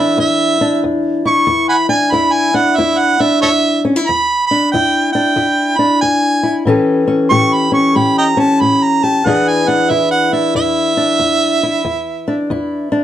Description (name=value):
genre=acoustic country blues, solo or duo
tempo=93 BPM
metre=4/4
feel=swing 64% on 8ths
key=E mixolydian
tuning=A4 = 439 Hz
part: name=warm harmonica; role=melody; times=0.0-12.5 s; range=A4 to C#6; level=-14 LUFS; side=right 3 dB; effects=none
part: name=fingerpicked old ladder-braced acoustic guitar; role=accompaniment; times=0.0-13.0 s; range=E2 to A4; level=-14 LUFS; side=left 2 dB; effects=none
room=moderate studio reverb, RT60 0.5 s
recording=none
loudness=-11 LUFS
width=side -11 dB against mid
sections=0.0-4.1 A section; 4.1-13.0 A section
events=harmonica solo 0.0-13.0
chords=0.0 E7; 6.6 A7; 9.2 E7